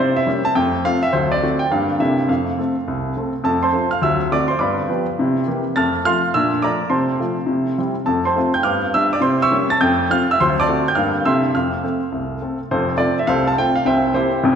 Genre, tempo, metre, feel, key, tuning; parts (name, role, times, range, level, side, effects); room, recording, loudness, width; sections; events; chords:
jazz, stride piano; 208 BPM; 4/4; swing 66% on 8ths; F major; A4 = 441 Hz
clear baby grand piano; solo; 0.0-14.6 s; F1 to A6; -16 LUFS; equal
wet concert hall reverb, RT60 1.9 s; recorded in a church or concert hall; -16 LUFS; side -7 dB against mid
0.0-3.4 A section; 3.4-12.7 A section; 12.7-14.6 B section
0.0 C7b9; 0.6 F; 1.1 D7; 1.7 Gm; 2.0 C13; 2.3 F; 4.0 D7; 4.6 G7; 5.2 C7; 5.8 F; 6.3 Bbmaj7; 6.9 F/C; 7.5 C; 8.1 F; 8.6 G7; 9.2 C7b9; 9.8 F; 10.4 D7; 11.0 Gm; 11.3 C13; 11.5 F; 13.9 C7